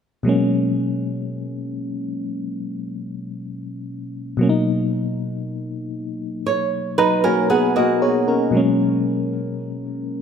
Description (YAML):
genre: R&B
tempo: 58 BPM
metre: 4/4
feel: straight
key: G# minor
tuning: A4 = 440 Hz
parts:
  - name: FM electric piano with auto-pan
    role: accompaniment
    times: 0.2-10.2 s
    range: B2 to A#5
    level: -20 LUFS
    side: left 1 dB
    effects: none
  - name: flamenco guitar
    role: arpeggios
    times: 6.5-8.5 s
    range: A#3 to C#5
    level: -20 LUFS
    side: right 5 dB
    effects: ping-pong delay
room: moderate plate reverb, RT60 2.7 s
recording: none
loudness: -19 LUFS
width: side -7 dB against mid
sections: 0.3-10.2 A section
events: FM electric piano fill 6.5-8.5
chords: 0.3 G#m11; 4.4 Bmaj7; 8.5 G#m11